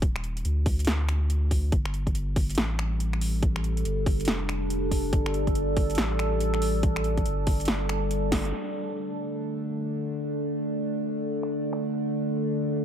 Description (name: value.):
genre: deep dubstep.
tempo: 141 BPM.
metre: 4/4.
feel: swing 62% on 16ths, half-time.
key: D minor.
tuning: A4 = 439 Hz.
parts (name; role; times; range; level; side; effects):
saturated sub bass; bass; 0.0-8.5 s; Eb1 to D2; -27 LUFS; equal; none.
deep house drum kit; drums; 0.0-12.8 s; crash cymbal, finger snaps, hi-hat, snare drum; -31 LUFS; equal; overdrive, low-pass filter on snare, low-pass filter on hats, low-pass filter on cymbals.
electronic kick drum; drums; 0.0-8.4 s; none; -25 LUFS; equal; overdrive.
overtone-sweeping drone; sustained chords; 2.8-12.8 s; D3 to A4; -28 LUFS; equal; chorus, built-in reverb.
room: light reverb, digital ambience.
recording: none.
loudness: -25 LUFS.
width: side -9 dB against mid.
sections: 0.0-8.5 A section; 8.5-12.8 B section.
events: drum fill 8.3; band accent 8.3.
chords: 0.0 Cmadd9/Eb (rootless); 1.7 G5; 8.5 D5.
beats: | 0.02 0.45 0.88 1.30 | 1.73 2.15 2.58 3.00 | 3.43 3.85 4.28 4.70 | 5.13 5.56 5.98 6.41 | 6.83 7.26 7.68 8.11 | 8.53 8.96 9.38 9.81 | 10.24 10.66 11.09 11.51 | 11.94 12.36 12.79.